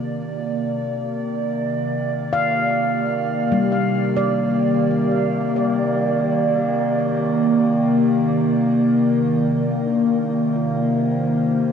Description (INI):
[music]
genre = ambient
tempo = free time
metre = none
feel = none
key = C minor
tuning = A4 = 440 Hz
[part]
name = warbly tape-like pad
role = sustained chords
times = 0.0-11.7 s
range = C3 to D5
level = -18 LUFS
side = equal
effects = chorus, built-in reverb, phaser, shimmer reverb
[part]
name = handpan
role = arpeggios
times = 2.3-11.7 s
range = G3 to F5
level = -24 LUFS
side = equal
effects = ping-pong delay, shimmer reverb
[sound]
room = wet huge ambient reverb, RT60 8.8 s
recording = worn, warbling old tape, cassette tape, warbly pitch drift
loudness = -17 LUFS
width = side -7 dB against mid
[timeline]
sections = 0.0-9.4 A section; 9.4-11.7 B section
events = fade-in on ambient pad 0.0-9.4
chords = 0.0 Cm9; 9.4 Cm7